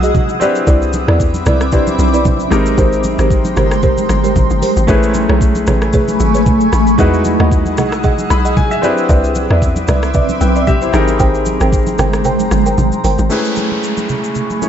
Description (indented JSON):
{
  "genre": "amapiano",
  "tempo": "114 BPM",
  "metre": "4/4",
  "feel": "swing 55% on 16ths",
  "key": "unclear",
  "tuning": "A4 = 440 Hz",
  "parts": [
    { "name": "warm concert grand piano", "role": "accompaniment", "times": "0.0-14.7 s", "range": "G#3 to B5", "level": "-18 LUFS", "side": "left 1 dB", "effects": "none" },
    { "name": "granular cloud pad", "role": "sustained chords", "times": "0.0-14.7 s", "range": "G#3 to E6", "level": "-18 LUFS", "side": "equal", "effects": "built-in reverb, sidechain pumping" },
    { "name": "buzzing marimba with soft mallets", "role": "stabs", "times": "0.0-13.2 s", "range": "E4 to G5", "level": "-19 LUFS", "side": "right 2 dB", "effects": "ping-pong delay" },
    { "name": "hollow log drum bass", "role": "bass", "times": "0.0-13.3 s", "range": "G1 to E2", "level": "-16 LUFS", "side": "equal", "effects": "none" },
    { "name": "smooth R&B drum kit", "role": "drums", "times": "0.0-14.7 s", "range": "hi-hat, kick drum, rim click, shaker", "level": "-17 LUFS", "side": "equal", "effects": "none" },
    { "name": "downlifter", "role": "sound effects", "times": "0.0-0.7, 13.3-14.7 s", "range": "none", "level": "-26 LUFS", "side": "equal", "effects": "none" },
    { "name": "congas", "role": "percussion", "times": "0.1-14.7 s", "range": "none", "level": "-22 LUFS", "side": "right 2 dB", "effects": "none" }
  ],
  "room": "light reverb",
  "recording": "dark, warm production, nothing above 7.9 kHz",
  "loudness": "-11 LUFS",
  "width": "side -9 dB against mid",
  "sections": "0.0-13.3 A section; 13.3-14.7 B section",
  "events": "drop 0.0-13.3; grand piano fill 8.0-9.1; kick muted 12.3-13.3",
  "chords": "0.4 Cmaj9; 2.5 G#maj9; 4.9 Amaj9; 7.0 Emaj9; 8.8 Cmaj9; 10.9 G#maj9; 13.3 Amaj9"
}